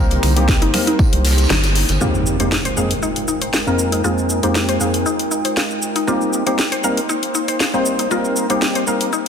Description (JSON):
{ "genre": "deep house", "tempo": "118 BPM", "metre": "4/4", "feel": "swing 54% on 16ths", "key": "F minor", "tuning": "A4 = 444 Hz", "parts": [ { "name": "warbly tape-like pad", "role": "sustained chords", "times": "0.0-9.3 s", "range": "Ab3 to G5", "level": "-25 LUFS", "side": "equal", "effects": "chorus, built-in reverb, sidechain pumping" }, { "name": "percussive organ stab", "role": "stabs", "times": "0.0-9.1 s", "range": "F2 to C5", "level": "-20 LUFS", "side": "equal", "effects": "ensemble chorus, sidechain pumping, dub echo" }, { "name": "round analog bass", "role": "bass", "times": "0.0-2.0 s", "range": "G1 to C2", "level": "-16 LUFS", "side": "equal", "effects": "tube saturation, sidechain pumping" }, { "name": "house drum kit", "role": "drums", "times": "0.1-9.2 s", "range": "finger snaps, hi-hat, shaker, snare drum", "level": "-21 LUFS", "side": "left 1 dB", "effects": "overdrive, studio ambience" }, { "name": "loose indie drum kit", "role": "drums", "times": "0.1-2.0 s", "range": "hi-hat, snare drum, tambourine", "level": "-27 LUFS", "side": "equal", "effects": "sidechain pumping on hats, high-pass filter on hats, studio ambience, high-pass filter on snare, sidechain pumping on perc, high-pass filter on perc, high-pass filter on room" }, { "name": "congas", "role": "percussion", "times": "0.1-2.0 s", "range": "none", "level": "-27 LUFS", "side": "right 3 dB", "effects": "sidechain pumping on perc" }, { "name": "electronic kick drum", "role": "drums", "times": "0.5-1.1 s", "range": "none", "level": "-15 LUFS", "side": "equal", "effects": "overdrive, studio ambience" }, { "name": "mallet-like synth pluck", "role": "melody", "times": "0.6-2.0 s", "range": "Eb4", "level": "-26 LUFS", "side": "equal", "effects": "chorus, dub echo" }, { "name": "mallet-like synth pluck", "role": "arpeggios", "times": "2.0-9.2 s", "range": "Eb4 to F5", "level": "-24 LUFS", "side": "left 5 dB", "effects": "chorus, phaser, sidechain pumping, dub echo" }, { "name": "impact", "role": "sound effects", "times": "2.0-4.0 s", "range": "none", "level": "-25 LUFS", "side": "right 1 dB", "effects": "none" } ], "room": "moderate echo chamber reverb, RT60 2.3 s", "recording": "dense, heavily limited modern master", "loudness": "-15 LUFS", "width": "side -7 dB against mid", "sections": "0.0-2.0 A section; 2.0-9.3 B section", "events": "kick drops out 1.5-2.0; band accent 1.5; impact 2.0-4.0; filter sweep on synth stab 2.0-9.3", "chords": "0.0 Cm7; 2.0 Fm11; 6.1 Cm7" }